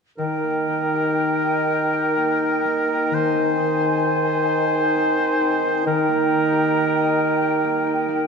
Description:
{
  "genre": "classical, slow romantic movement for symphony orchestra",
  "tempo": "39-46 BPM (dotted quarters)",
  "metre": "6/8",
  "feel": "rubato",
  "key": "Eb major",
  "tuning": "A4 = 440 Hz",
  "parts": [
    { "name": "mellow small flute group", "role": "second line", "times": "0.2-8.3 s", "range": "G5 to Ab5", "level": "-25 LUFS", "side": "equal", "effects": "none" },
    { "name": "warm clarinet", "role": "second line", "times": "0.2-8.2 s", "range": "Eb4", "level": "-26 LUFS", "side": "right 1 dB", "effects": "none" },
    { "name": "warm oboe", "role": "second line", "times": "0.2-8.2 s", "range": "Bb4 to C5", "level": "-24 LUFS", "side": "equal", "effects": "none" },
    { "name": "mellow bassoon", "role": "accompaniment", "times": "0.2-8.2 s", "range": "Eb3", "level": "-24 LUFS", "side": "right 4 dB", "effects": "none" },
    { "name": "concert harp", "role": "arpeggios", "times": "0.2-8.3 s", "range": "Eb3 to Eb5", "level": "-26 LUFS", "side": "left 6 dB", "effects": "none" }
  ],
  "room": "wet scoring stage reverb, RT60 1.9 s",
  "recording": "none",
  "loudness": "-18 LUFS",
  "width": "side -5 dB against mid",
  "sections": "0.2-8.3 A section",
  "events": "none",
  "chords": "0.2 Eb; 3.1 Ab/Eb; 5.9 Eb",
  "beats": "| 0.18 1.67 | 3.11 4.50 | 5.86 7.18"
}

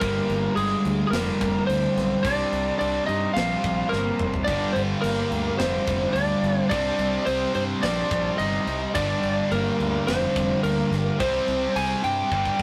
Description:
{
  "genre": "hard rock",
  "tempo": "107 BPM",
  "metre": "4/4",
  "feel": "straight",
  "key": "G minor",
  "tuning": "A4 = 440 Hz",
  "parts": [
    { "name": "lightly driven lead guitar", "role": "melody", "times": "0.0-12.6 s", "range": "Ab4 to Ab5", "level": "-28 LUFS", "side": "equal", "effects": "none" },
    { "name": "octave-fuzz lead guitar", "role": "second line", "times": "0.0-12.6 s", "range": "Ab3 to Ab4", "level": "-36 LUFS", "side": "equal", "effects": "distortion" },
    { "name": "cranked stack guitar", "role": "riff", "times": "0.0-12.6 s", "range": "G2 to C4", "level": "-30 LUFS", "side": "equal", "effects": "overdrive" },
    { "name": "distorted electric guitar", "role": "riff", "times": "0.0-12.6 s", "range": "G2 to C4", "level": "-36 LUFS", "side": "equal", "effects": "none" },
    { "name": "fuzz fingered electric bass", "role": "bass", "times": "0.0-12.6 s", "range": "F1 to G2", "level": "-32 LUFS", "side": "equal", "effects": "overdrive" },
    { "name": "tight metal drum kit", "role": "drums", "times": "0.0-12.6 s", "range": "crash cymbal, kick drum, snare drum, toms", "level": "-36 LUFS", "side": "equal", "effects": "none" },
    { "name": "tight distorted guitar", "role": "riff", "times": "4.5-12.6 s", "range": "G2 to C4", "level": "-35 LUFS", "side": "equal", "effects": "distortion" }
  ],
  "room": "moderate stone room reverb, RT60 1.3 s",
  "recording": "rough rehearsal-room recording, warm saturation",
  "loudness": "-24 LUFS",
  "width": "mono",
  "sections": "0.0-12.6 A section",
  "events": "drum fill 3.9-4.5, 12.3-12.6",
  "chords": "0.0 Gm; 2.3 C5; 4.5 Gm; 6.7 Cm; 9.0 Gm; 11.2 C5",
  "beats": "| 0.02 0.58 1.14 1.69 | 2.25 2.81 3.37 3.93 | 4.48 5.04 5.60 6.16 | 6.72 7.28 7.84 8.40 | 8.96 9.52 10.08 10.64 | 11.20 11.76 12.32"
}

